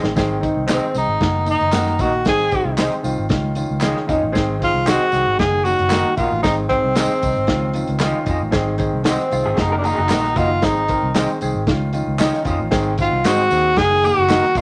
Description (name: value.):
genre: uptempo 1960s-style soul.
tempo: 115 BPM.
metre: 4/4.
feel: straight.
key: Ab mixolydian.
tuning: A4 = 440 Hz.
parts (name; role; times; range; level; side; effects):
warm upright piano; accompaniment; 0.0-14.6 s; Eb3 to Ab5; -25 LUFS; equal; none.
vintage muted fingered electric bass; bass; 0.0-14.6 s; Gb1 to Ab2; -26 LUFS; equal; none.
warm soul drum kit; drums; 0.0-14.6 s; hi-hat, kick drum, snare drum; -24 LUFS; equal; none.
tambourine and handclaps; percussion; 0.2-14.6 s; none; -34 LUFS; equal; none.
breathy tenor saxophone; melody; 0.7-14.6 s; C4 to Ab4; -20 LUFS; equal; none.
electric guitar through a small old amp; stabs; 0.7-14.6 s; Db4 to Eb5; -29 LUFS; equal; none.
electric guitar through a small old amp; riff; 9.3-10.6 s; Eb4 to Bb4; -28 LUFS; equal; tremolo.
room: moderate studio reverb, RT60 0.8 s.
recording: none.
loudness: -18 LUFS.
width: mono.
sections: 0.2-14.6 A section.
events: drum fill 0.0; upright piano fill 3.6-4.4, 11.9-12.7.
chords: 0.2 Ab; 1.2 Ebm/Gb; 2.3 Ab; 3.3 Dbadd9; 4.4 Ab; 5.4 Ebm/Gb; 6.4 Ab; 7.5 Dbadd9; 8.5 Ab; 9.6 Ebm/Gb; 10.6 Ab; 11.7 Dbadd9; 12.7 Ab; 13.8 Ebm/Gb.